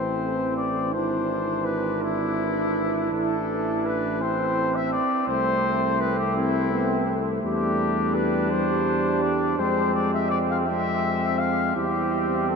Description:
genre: classical, brass quintet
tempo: 56 BPM (dotted quarters)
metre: 6/8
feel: straight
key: A minor, C major from 7.4 s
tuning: A4 = 439 Hz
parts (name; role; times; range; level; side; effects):
- mellow cornet; melody; 0.0-12.6 s; E4 to F5; -26 LUFS; left 5 dB; none
- clear flugelhorn; second line; 0.0-12.6 s; C4 to D4; -29 LUFS; right 6 dB; none
- dark euphonium; accompaniment; 0.0-12.6 s; G3 to E4; -29 LUFS; right 3 dB; none
- warm French horn; accompaniment; 0.0-12.6 s; E3 to A3; -30 LUFS; left 4 dB; none
- mellow tuba; bass; 0.0-12.6 s; G#1 to F2; -30 LUFS; equal; none
room: wet huge ambient reverb, RT60 9.2 s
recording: in a vast, echoing space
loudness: -22 LUFS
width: side -5 dB against mid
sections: 0.0-12.6 A section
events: none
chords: 0.0 Am; 0.9 E7/G#; 3.1 Am; 5.3 Am/C; 7.4 C/E; 9.6 Fm; 11.8 C/E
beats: | 0.94 2.02 | 3.13 4.21 | 5.28 6.36 | 7.43 8.51 | 9.58 10.66 | 11.76

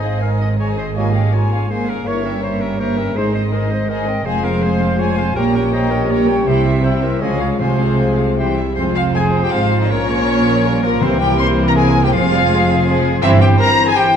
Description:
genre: quick classical-period movement for symphony orchestra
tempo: 162 BPM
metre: 3/4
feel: rubato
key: Ab major, F minor from 4.3 s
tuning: A4 = 444 Hz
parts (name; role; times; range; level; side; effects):
- warm chamber violin section; melody; 0.0-14.2 s; Bb4 to C6; -22 LUFS; left 5 dB; none
- bright oboe; second line; 0.0-14.2 s; Ab4 to F5; -27 LUFS; equal; none
- concert flute; second line; 0.0-14.2 s; Bb4 to C6; -26 LUFS; equal; none
- dark chamber violin section; second line; 0.0-13.4 s; C4 to C5; -28 LUFS; left 5 dB; none
- warm clarinet; second line; 0.0-14.2 s; E4 to Db5; -27 LUFS; left 3 dB; none
- rich chamber viola section; accompaniment; 0.0-13.4 s; E3 to E4; -24 LUFS; right 2 dB; none
- dark chamber double bass section; bass; 0.0-13.5 s; F1 to Db2; -20 LUFS; right 3 dB; none
- rich chamber cello section; bass; 0.0-13.5 s; F2 to Db3; -20 LUFS; right 2 dB; none
- mellow French horn section; sustained chords; 1.0-14.2 s; E3 to G4; -22 LUFS; left 4 dB; none
- mellow trumpet; stabs; 1.0-14.1 s; Bb3 to Db5; -24 LUFS; right 2 dB; none
- timpani; percussion; 7.6-8.1, 11.0-11.5 s; C3; -26 LUFS; left 2 dB; none
room: wet recital hall reverb, RT60 1.6 s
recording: dark, warm production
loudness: -13 LUFS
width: side -8 dB against mid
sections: 0.0-8.8 A section; 8.8-14.2 B section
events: none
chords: 0.0 Ab; 1.0 Bbm7/Ab; 2.1 Gdim7; 3.2 Ab; 4.3 Fm; 5.4 Gdim/Bb; 6.5 C; 7.2 Db; 7.6 Fm/C; 8.4 C; 8.8 Fm; 9.9 Bbm; 11.0 C7; 12.1 Fm; 13.2 C/G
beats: 0.23 0.59 | 0.97 1.33 1.70 | 2.07 2.43 2.80 | 3.17 3.53 3.89 | 4.25 4.62 4.99 | 5.36 5.73 6.10 | 6.47 6.84 7.21 | 7.60 8.00 8.39 | 8.77 9.16 9.53 | 9.90 10.28 10.65 | 11.02 11.39 11.76 | 12.12 12.48 12.86 | 13.22 13.59 13.95

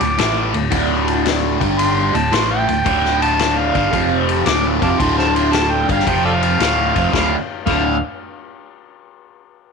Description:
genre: blues rock power trio and southern rock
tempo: 112 BPM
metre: 4/4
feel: swing 67% on 8ths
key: D minor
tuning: A4 = 440 Hz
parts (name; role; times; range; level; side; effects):
- overdriven harmonica; melody; 0.0-8.0 s; A4 to D6; -20 LUFS; right 2 dB; slapback echo
- cranked stack guitar; riff; 0.0-8.0 s; D2 to A3; -18 LUFS; right 1 dB; overdrive, phaser
- hollow-body short-scale fingered electric bass; bass; 0.0-8.0 s; D1 to A1; -23 LUFS; right 1 dB; none
- vintage drum kit; drums; 0.0-7.8 s; crash cymbal, kick drum, ride cymbal, snare drum; -21 LUFS; left 7 dB; none
room: light reverb, studio reverb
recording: 1960s-style stereo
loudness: -14 LUFS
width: side -5 dB against mid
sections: 0.0-7.1 A section; 7.1-9.3 B section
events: none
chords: 0.0 D5; 1.5 G5; 2.1 D5; 3.9 F5; 4.5 Dm; 6.1 F5; 6.6 Dm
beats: 0.19 | 0.72 1.25 1.79 2.32 | 2.86 3.39 3.92 4.46 | 4.99 5.53 6.06 6.60 | 7.13 7.66

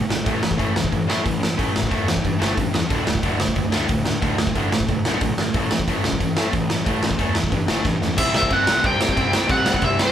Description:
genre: punk rock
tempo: 182 BPM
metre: 4/4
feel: straight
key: unclear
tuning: A4 = 440 Hz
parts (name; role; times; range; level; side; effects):
- crunchy overdriven guitar; riff; 0.0-10.1 s; D2 to C4; -25 LUFS; left 6 dB; none
- tight distorted guitar; riff; 0.0-10.1 s; D2 to C4; -26 LUFS; right 6 dB; distortion
- fuzz picked electric bass; bass; 0.0-10.1 s; D1 to A2; -28 LUFS; equal; overdrive
- raw garage drum kit; drums; 0.1-10.1 s; crash cymbal, hi-hat, kick drum, snare drum; -22 LUFS; equal; none
- biting lead guitar; melody; 8.2-10.1 s; C5 to G5; -20 LUFS; equal; overdrive
room: light reverb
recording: band playing live in one room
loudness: -18 LUFS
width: side -10 dB against mid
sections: 0.0-8.2 A section; 8.2-10.1 B section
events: drum fill 7.9-8.2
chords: 0.3 A5; 2.9 D5; 5.5 A5; 8.2 C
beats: | 0.26 0.59 0.92 1.25 | 1.58 1.91 2.24 2.57 | 2.90 3.23 3.56 3.89 | 4.22 4.55 4.88 5.21 | 5.54 5.87 6.20 6.53 | 6.86 7.19 7.52 7.85 | 8.18 8.51 8.84 9.17 | 9.50 9.83

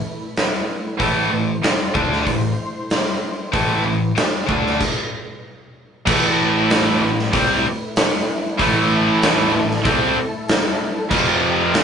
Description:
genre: hard rock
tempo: 95 BPM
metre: 4/4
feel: straight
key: A minor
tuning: A4 = 439 Hz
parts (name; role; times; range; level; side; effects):
- analog string pad; sustained chords; 0.0-11.8 s; F3 to C5; -28 LUFS; left 1 dB; ensemble chorus
- big rock drum kit; drums; 0.4-11.8 s; crash cymbal, hi-hat, kick drum, snare drum; -20 LUFS; equal; none
- scooped high-gain guitar; riff; 1.0-11.8 s; F2 to D4; -22 LUFS; left 4 dB; distortion
- tight distorted guitar; riff; 1.0-11.8 s; F2 to D4; -21 LUFS; right 4 dB; distortion
- growling picked electric bass; bass; 1.0-11.8 s; F1 to D2; -27 LUFS; right 1 dB; overdrive
- scooped high-gain guitar; riff; 6.1-11.8 s; F2 to C4; -22 LUFS; equal; distortion
room: moderate studio reverb, RT60 0.6 s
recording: rough rehearsal-room recording, nothing above 10.5 kHz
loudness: -16 LUFS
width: side -7 dB against mid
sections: 0.0-6.1 A section; 6.1-11.8 B section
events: stop 4.8-6.1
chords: 0.0 Am; 5.4 N.C.; 6.1 Am; 11.1 F5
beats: 0.36 | 0.99 1.63 2.26 2.90 | 3.53 4.17 4.80 5.43 | 6.06 6.70 7.33 7.96 | 8.59 9.22 9.84 10.47 | 11.10 11.73

